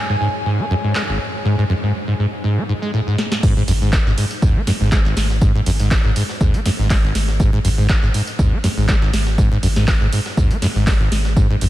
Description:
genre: acid house.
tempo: 121 BPM.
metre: 4/4.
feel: swing 54% on 16ths.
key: G# minor.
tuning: A4 = 440 Hz.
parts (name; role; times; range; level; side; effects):
dark studio string section; texture; 0.0-1.4 s; G#4 to G#5; -27 LUFS; left 1 dB; sidechain pumping.
acid bass, saw; riff; 0.1-11.7 s; G#1 to B3; -19 LUFS; equal; tube saturation, wide subtle chorus, sidechain pumping, ping-pong delay.
booming analog drum machine; drums; 1.0-11.7 s; crash cymbal, handclaps, hi-hat, snare drum; -25 LUFS; right 1 dB; none.
breakbeat sampler-style drum kit; drums; 3.4-11.7 s; hi-hat, snare drum, tambourine; -33 LUFS; right 1 dB; sidechain pumping on perc, high-pass filter on perc, high-pass filter on snare, sidechain pumping on hats, high-pass filter on hats, high-pass filter on room.
electronic kick drum; drums; 3.4-11.5 s; none; -16 LUFS; equal; overdrive.
warm sub bass; bass; 3.7-11.7 s; G#1 to D#2; -20 LUFS; equal; sidechain pumping.
room: light reverb.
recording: none.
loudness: -15 LUFS.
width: side -15 dB against mid.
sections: 0.0-3.4 A section; 3.4-11.7 B section.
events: drum fill 3.2; drop 3.4-11.7.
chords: none.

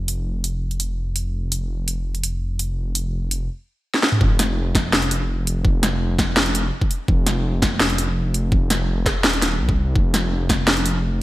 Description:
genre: half-time drum and bass.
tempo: 167 BPM.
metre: 4/4.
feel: half-time.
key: unclear.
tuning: A4 = 440 Hz.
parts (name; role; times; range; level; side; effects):
dark detuned saw bass; bass; 0.0-11.2 s; Eb1 to C2; -22 LUFS; equal; none.
drum and bass drum kit; drums; 0.1-10.9 s; hi-hat, snare drum, toms; -20 LUFS; equal; overdrive, gated reverb.
electronic kick drum; drums; 4.2-10.6 s; none; -20 LUFS; equal; overdrive.
room: light reverb.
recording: bright 1980s-style digital production.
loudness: -18 LUFS.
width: side -16 dB against mid.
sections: 0.0-4.2 A section; 4.2-11.2 B section.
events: drum fill 3.9; drop 4.2-11.2.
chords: none.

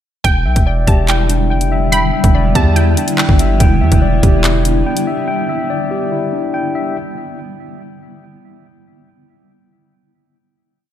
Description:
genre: hip hop, drill.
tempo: 143 BPM.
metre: 4/4.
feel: half-time.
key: E minor.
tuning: A4 = 437 Hz.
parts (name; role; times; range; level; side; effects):
warbly dusty pluck; second line; 0.2-3.6 s; G5 to B5; -21 LUFS; right 2 dB; chorus, ping-pong delay.
granular cloud pad; sustained chords; 1.0-6.9 s; D3 to E4; -20 LUFS; right 1 dB; built-in reverb.
mellow tine electric piano; arpeggios; 0.2-7.0 s; D4 to G5; -19 LUFS; left 4 dB; analog chorus, ping-pong delay.
hard-hitting 808-style bass; bass; 0.2-4.8 s; E1 to E2; -14 LUFS; equal; none.
drill drum kit; drums; 0.2-5.1 s; handclaps, hi-hat, kick drum; -14 LUFS; equal; none.
room: light reverb, digital ambience.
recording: none.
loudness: -12 LUFS.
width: side -11 dB against mid.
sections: 0.2-7.0 hook.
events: none.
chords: 0.2 Em7.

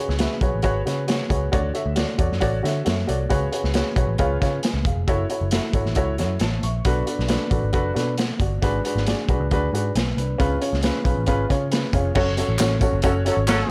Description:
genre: uptempo 1960s-style soul.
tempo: 135 BPM.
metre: 4/4.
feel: straight.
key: unclear.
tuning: A4 = 440 Hz.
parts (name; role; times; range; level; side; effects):
dark upright piano; accompaniment; 0.0-13.6 s; G#2 to C#6; -27 LUFS; equal; none.
vintage muted picked electric bass; bass; 0.1-13.6 s; E1 to D3; -27 LUFS; equal; none.
crunchy breakbeat drum kit; drums; 0.1-13.6 s; crash cymbal, hi-hat, kick drum, snare drum; -27 LUFS; equal; none.
tambourine and handclaps; percussion; 12.4-13.6 s; none; -35 LUFS; equal; none.
dark horn section; second line; 13.0-13.7 s; F#3 to A4; -27 LUFS; equal; none.
room: light reverb.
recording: dark, warm production.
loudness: -22 LUFS.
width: mono.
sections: 0.0-12.2 A section; 12.2-13.7 B section.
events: upright piano fill 0.9-1.5.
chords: 0.0 C#7sus4; 1.5 Dmaj7; 3.3 C#7sus4; 4.2 C#7; 5.1 F#m7; 6.9 Bm7; 8.6 G#m7b5; 10.4 C#7; 12.2 F#m.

